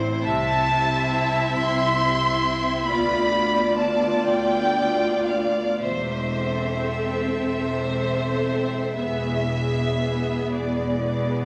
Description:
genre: classical, slow romantic movement for string orchestra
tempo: 37-46 BPM (dotted quarters)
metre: 12/8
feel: rubato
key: A minor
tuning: A4 = 440 Hz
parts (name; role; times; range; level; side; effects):
- clear chamber violin section; second line; 0.0-11.4 s; C5 to E5; -28 LUFS; equal; none
- rich studio viola section; accompaniment; 0.0-11.4 s; B3 to A4; -29 LUFS; equal; none
- clear chamber cello section; bass; 0.0-11.4 s; D2 to C3; -33 LUFS; equal; none
- rich chamber double bass section; bass; 0.0-11.4 s; E1 to D2; -32 LUFS; equal; none
- rich chamber violin section; melody; 0.2-10.5 s; E5 to C6; -28 LUFS; equal; none
room: wet recital hall reverb, RT60 1.4 s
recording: none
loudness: -23 LUFS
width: mono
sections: 0.0-11.4 A section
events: none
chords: 0.2 Am/C; 2.9 Bdim/D; 5.8 Am/E; 9.0 E

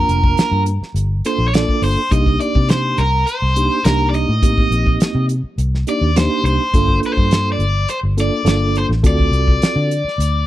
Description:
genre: straight-eighth soul blues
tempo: 104 BPM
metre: 4/4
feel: straight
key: G minor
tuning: A4 = 439 Hz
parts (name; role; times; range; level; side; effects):
- overdriven electric guitar; melody; 0.0-10.5 s; Bb4 to Eb5; -20 LUFS; left 1 dB; none
- mellow tine electric piano; accompaniment; 0.0-9.9 s; Bb3 to Bb4; -21 LUFS; right 2 dB; medium stereo tremolo
- vintage muted fingered electric bass; bass; 0.0-10.4 s; F1 to D3; -17 LUFS; equal; none
- damped 70s drum kit; drums; 0.1-10.3 s; hi-hat, kick drum, snare drum; -17 LUFS; equal; none
room: studio reverb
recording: dry, close 1970s-style studio recording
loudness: -14 LUFS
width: side -14 dB against mid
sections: 0.0-10.5 A section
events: none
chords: 0.0 Gm9; 2.1 Cm9; 6.7 Gm9; 9.0 D7#9

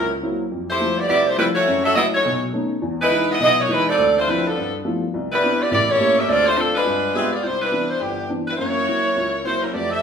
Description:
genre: jazz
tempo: 208 BPM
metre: 4/4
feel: swing 62% on 8ths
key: unclear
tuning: A4 = 441 Hz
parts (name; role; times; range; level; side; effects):
- warm saxophone section; melody; 0.0-10.0 s; E3 to E5; -18 LUFS; equal; none
- dark upright piano; accompaniment; 0.0-10.0 s; G1 to G4; -24 LUFS; left 1 dB; none
room: wet large studio reverb, RT60 1.2 s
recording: band playing live in one room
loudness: -17 LUFS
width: side -7 dB against mid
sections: 0.0-7.4 A section; 7.4-10.0 B section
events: none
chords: 0.0 F#7#11; 0.5 Fmaj9; 1.7 F#m7; 2.2 B9; 2.8 Emaj7; 4.0 Dm9; 4.6 G13; 5.1 Cmaj9; 5.7 A7b9; 6.3 Dm7; 6.9 G7b9; 7.4 Cmaj9; 8.6 F#7#11

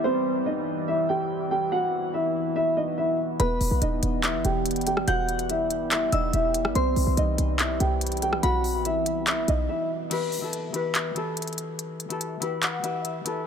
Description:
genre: hip hop, trap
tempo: 143 BPM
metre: 4/4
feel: half-time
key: E harmonic minor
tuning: A4 = 436 Hz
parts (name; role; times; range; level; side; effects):
- dark concert grand piano; melody; 0.0-9.9 s; B3 to G5; -26 LUFS; equal; low-pass filter, ping-pong delay
- deep dark ambient pad; sustained chords; 0.0-10.1 s; E3 to F#4; -32 LUFS; right 1 dB; chorus, built-in reverb
- glassy synth bell; second line; 3.4-8.8 s; B5 to G6; -33 LUFS; left 5 dB; chorus, ping-pong delay
- short 808-style bass; bass; 3.4-9.7 s; E1 to C2; -27 LUFS; equal; none
- trap drum kit; drums; 3.4-13.4 s; crash cymbal, handclaps, hi-hat, rim click; -29 LUFS; left 1 dB; none
- Celtic harp; accompaniment; 10.1-13.5 s; E3 to G5; -29 LUFS; left 4 dB; low-pass filter
room: light reverb, digital ambience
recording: none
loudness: -23 LUFS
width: side -7 dB against mid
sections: 0.0-10.1 A section; 10.1-13.5 B section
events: break 9.7-10.1, 10.1-13.5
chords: 0.0 C; 1.7 Bsus4; 3.4 Em; 6.8 C; 8.4 Bsus4; 10.1 Em

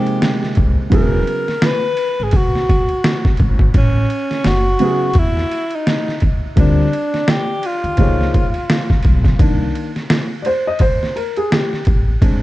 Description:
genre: hip hop, jazz-hop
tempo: 85 BPM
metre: 4/4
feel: swing 60% on 16ths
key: unclear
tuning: A4 = 440 Hz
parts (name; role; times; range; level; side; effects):
- breathy alto saxophone; melody; 0.0-9.1 s; C#4 to B4; -20 LUFS; left 1 dB; analog delay
- dark baby grand piano; accompaniment; 0.0-12.4 s; C3 to Eb5; -19 LUFS; equal; none
- trip hop sampler-style drum kit; drums; 0.1-12.4 s; hi-hat, kick drum, ride cymbal, snare drum; -16 LUFS; equal; overdrive
- upright bass; bass; 0.6-12.1 s; E1 to E2; -18 LUFS; equal; none
room: little or no reverb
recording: dark, warm production, nothing above 11.0 kHz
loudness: -14 LUFS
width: side -16 dB against mid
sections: 0.0-9.4 A section; 9.4-12.4 B section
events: grand piano solo 9.4-12.4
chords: 0.0 Fm9; 0.9 E; 3.7 A69; 6.6 Dmadd11; 8.0 Db13; 9.4 Cm9

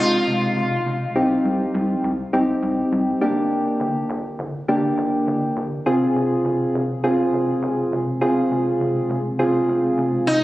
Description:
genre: synth-pop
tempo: 102 BPM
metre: 4/4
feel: straight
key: F dorian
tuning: A4 = 440 Hz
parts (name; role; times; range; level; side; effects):
- sitar; melody; 0.0-0.8, 10.3-10.4 s; Eb4 to F4; -22 LUFS; left 1 dB; analog delay
- soft electric-piano-like synth keys; accompaniment; 0.0-10.3 s; Ab3 to Ab4; -19 LUFS; equal; chorus
- rubbery square bass; bass; 0.0-10.4 s; F1 to C2; -27 LUFS; equal; none
room: wet lush hall reverb, RT60 2.4 s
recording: recorded on a phone in the room, club reverb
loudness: -18 LUFS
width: side -16 dB against mid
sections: 0.0-1.2 A section; 1.2-10.4 B section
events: none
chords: 0.0 Fm; 1.2 Cm; 3.2 Gm; 5.9 Fm

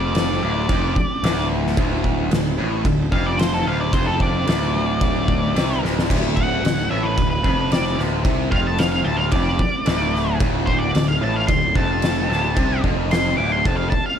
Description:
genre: blues rock power trio and southern rock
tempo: 111 BPM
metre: 4/4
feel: straight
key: unclear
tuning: A4 = 440 Hz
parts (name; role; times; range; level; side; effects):
- octave-fuzz lead guitar; melody; 0.0-14.2 s; A4 to D6; -24 LUFS; equal; distortion, digital delay
- tight distorted guitar; riff; 0.0-13.9 s; D2 to C3; -23 LUFS; equal; distortion
- fuzz picked electric bass; bass; 0.0-13.9 s; D1 to C2; -24 LUFS; equal; overdrive
- oversized low-tuned drum kit; drums; 0.1-14.0 s; crash cymbal, kick drum, snare drum; -22 LUFS; equal; none
room: small room ambience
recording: none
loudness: -17 LUFS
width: side -8 dB against mid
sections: 0.0-14.2 A section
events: lead electric guitar solo 0.0-14.2; drum fill 5.8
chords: 0.0 D5

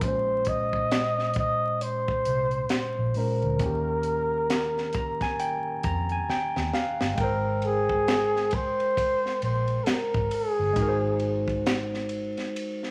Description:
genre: R&B, neo-soul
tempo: 67 BPM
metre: 4/4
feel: swing 60% on 16ths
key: Ab major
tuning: A4 = 440 Hz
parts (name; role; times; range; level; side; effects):
- breathy flugelhorn; melody; 0.0-11.7 s; Ab4 to Eb5; -29 LUFS; equal; none
- barky tine electric piano; accompaniment; 0.0-12.9 s; Bb2 to Bb5; -32 LUFS; equal; overdrive
- vintage muted fingered electric bass; bass; 0.0-12.3 s; G1 to F2; -34 LUFS; equal; none
- tight funk drum kit; drums; 0.0-12.9 s; finger snaps, hi-hat, kick drum, ride cymbal, snare drum; -33 LUFS; equal; none
room: wet large studio reverb, RT60 0.9 s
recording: vinyl crackle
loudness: -26 LUFS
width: mono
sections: 0.0-7.2 A section; 7.2-12.9 B section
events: tine electric piano fill 4.5-7.2; drum fill 6.3-7.2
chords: 0.0 Bbm9; 3.6 Eb7; 7.2 Abmaj9; 10.8 Ab7

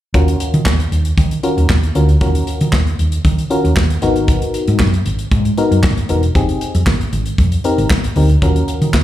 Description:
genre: early-eighties boogie funk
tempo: 116 BPM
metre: 4/4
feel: straight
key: Eb minor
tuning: A4 = 440 Hz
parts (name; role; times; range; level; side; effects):
- FM electric piano; accompaniment; 0.1-8.9 s; Cb4 to Bb4; -18 LUFS; left 2 dB; chorus, slapback echo
- hollow-body short-scale fingered electric bass; bass; 0.1-9.0 s; Fb1 to Eb3; -15 LUFS; equal; none
- modern studio drum kit; drums; 0.1-9.0 s; handclaps, hi-hat, kick drum, snare drum; -17 LUFS; equal; none
room: little or no reverb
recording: live gig heard through the venue's PA, club reverb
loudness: -12 LUFS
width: side -13 dB against mid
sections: 0.1-9.0 A section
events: none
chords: 0.1 Ebm9; 4.0 Abm9; 6.4 Fm9; 8.4 Ebm9

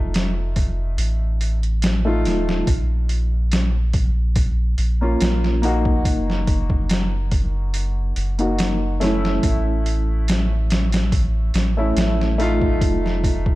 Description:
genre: trip hop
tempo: 71 BPM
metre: 4/4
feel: straight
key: Bb harmonic minor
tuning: A4 = 439 Hz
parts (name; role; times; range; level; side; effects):
- dark upright piano; accompaniment; 0.0-13.6 s; A3 to Gb4; -24 LUFS; left 1 dB; harmonic tremolo, tape echo
- soft dub sub bass; bass; 0.0-13.6 s; Eb1 to Bb1; -20 LUFS; equal; none
- trip hop sampler-style drum kit; drums; 0.1-13.6 s; hi-hat, kick drum, snare drum; -22 LUFS; equal; overdrive
room: little or no reverb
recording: dark, warm production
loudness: -18 LUFS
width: side -18 dB against mid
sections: 0.0-13.6 A section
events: none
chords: 0.0 F7; 2.7 Bbm; 6.1 Gb6; 9.4 A; 12.8 F7

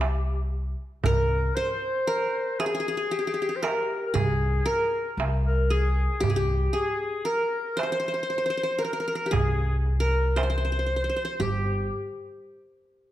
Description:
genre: Turkish makam ensemble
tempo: 116 BPM (eighths)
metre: 10/8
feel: straight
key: unclear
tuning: A4 = 441 Hz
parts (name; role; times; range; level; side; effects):
- qanun; melody; 0.0-11.9 s; G4 to C5; -29 LUFS; right 1 dB; none
- clear clarinet; second line; 0.0-11.9 s; G4 to C5; -30 LUFS; left 2 dB; none
- upright bass; bass; 0.0-11.9 s; G1 to C2; -26 LUFS; equal; none
- darbuka; percussion; 0.0-11.9 s; none; -31 LUFS; right 4 dB; none
room: wet recital hall reverb, RT60 1.4 s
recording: none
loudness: -24 LUFS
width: side -13 dB against mid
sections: 0.0-11.4 A section; 11.4-13.1 B section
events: none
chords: none

